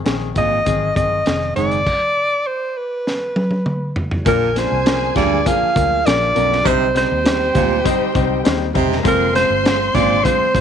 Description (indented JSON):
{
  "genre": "uptempo 1960s-style soul",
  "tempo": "100 BPM",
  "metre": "4/4",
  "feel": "straight",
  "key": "unclear",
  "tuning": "A4 = 438 Hz",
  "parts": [
    { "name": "warm upright piano", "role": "accompaniment", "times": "0.0-10.6 s", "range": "Eb3 to C5", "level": "-22 LUFS", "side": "left 14 dB", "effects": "none" },
    { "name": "vintage muted fingered electric bass", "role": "bass", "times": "0.1-10.6 s", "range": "E1 to Eb2", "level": "-24 LUFS", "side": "equal", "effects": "none" },
    { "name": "crunchy breakbeat drum kit", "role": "drums", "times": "0.1-10.6 s", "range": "crash cymbal, hi-hat, kick drum, snare drum, toms", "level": "-21 LUFS", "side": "equal", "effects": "none" },
    { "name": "warm alto saxophone", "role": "melody", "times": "0.4-10.6 s", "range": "Bb4 to F5", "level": "-18 LUFS", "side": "right 1 dB", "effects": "none" },
    { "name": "breathy baritone saxophone", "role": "riff", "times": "0.4-10.2 s", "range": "F2 to C3", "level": "-22 LUFS", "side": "right 14 dB", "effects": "none" },
    { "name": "dark studio string section", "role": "second line", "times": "4.3-10.6 s", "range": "F4 to C6", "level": "-25 LUFS", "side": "equal", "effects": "tape echo" },
    { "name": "vibraphone with hard mallets", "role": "second line", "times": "4.3-10.6 s", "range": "Bb3 to F4", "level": "-29 LUFS", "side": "right 17 dB", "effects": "none" }
  ],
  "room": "small room reverb",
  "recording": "1960s-style stereo with parts hard left and right",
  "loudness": "-15 LUFS",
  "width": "side -8 dB against mid",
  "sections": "0.0-4.3 A section; 4.3-10.6 B section",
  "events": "drum fill 3.1-4.3",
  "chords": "0.0 Ab; 1.9 N.C.; 4.3 Bb; 6.7 Cm; 9.1 Fm",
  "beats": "0.06 0.66 1.26 | 1.86 2.46 3.06 3.66 | 4.26 4.86 5.46 6.06 | 6.66 7.26 7.86 8.46 | 9.05 9.65 10.25"
}